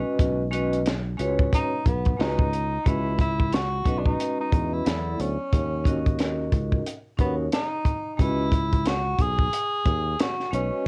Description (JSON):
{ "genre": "hip hop, jazz-hop", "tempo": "90 BPM", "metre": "4/4", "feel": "swing 58% on 16ths", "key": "C# dorian", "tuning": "A4 = 438 Hz", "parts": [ { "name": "vibraphone with medium hard mallets", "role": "accompaniment", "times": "0.0-10.9 s", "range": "F#3 to D#5", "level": "-31 LUFS", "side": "equal", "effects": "cassette tape" }, { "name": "sustaining fretless electric bass", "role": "bass", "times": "0.0-10.7 s", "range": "B1 to E2", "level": "-31 LUFS", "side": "equal", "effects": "none" }, { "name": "compact cocktail drum kit", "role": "drums", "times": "0.2-10.7 s", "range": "hi-hat, kick drum, snare drum", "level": "-26 LUFS", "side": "equal", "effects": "cassette tape" }, { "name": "breathy tenor saxophone", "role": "melody", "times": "1.5-10.9 s", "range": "B3 to G#4", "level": "-30 LUFS", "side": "equal", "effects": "cassette tape" } ], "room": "little or no reverb", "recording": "home recording on cassette", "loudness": "-25 LUFS", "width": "mono", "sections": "0.0-2.9 A section; 2.9-10.9 B section", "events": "tenor saxophone solo 0.0-2.9", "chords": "0.0 Badd9; 2.2 C#sus2; 2.9 C#m11; 4.9 E5; 5.5 D#m7; 8.2 Badd9" }